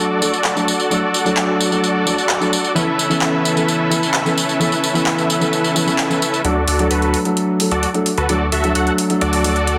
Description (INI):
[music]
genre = EDM, festival progressive house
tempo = 130 BPM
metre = 4/4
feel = straight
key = D major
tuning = A4 = 440 Hz
[part]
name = dark concert grand piano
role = accompaniment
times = 0.0-9.5 s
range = E3 to A4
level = -22 LUFS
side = equal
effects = tape echo
[part]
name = dense compressed supersaw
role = riff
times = 0.0-9.8 s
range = C#4 to F#5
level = -21 LUFS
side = equal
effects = low-pass filter, tape echo
[part]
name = big-room dance drum kit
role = drums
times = 0.2-9.8 s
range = handclaps, hi-hat, tambourine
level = -23 LUFS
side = equal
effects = none
[part]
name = detuned saw bass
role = bass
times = 6.4-9.8 s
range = D2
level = -24 LUFS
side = equal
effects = chorus
[sound]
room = moderate digital room reverb, RT60 1.3 s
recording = dense, heavily limited modern master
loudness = -17 LUFS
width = mono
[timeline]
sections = 0.0-6.4 A section; 6.4-9.8 B section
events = build-up 6.4-9.8; filter sweep on supersaw synth 6.4-9.8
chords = 0.0 D; 2.8 Aadd9; 6.4 D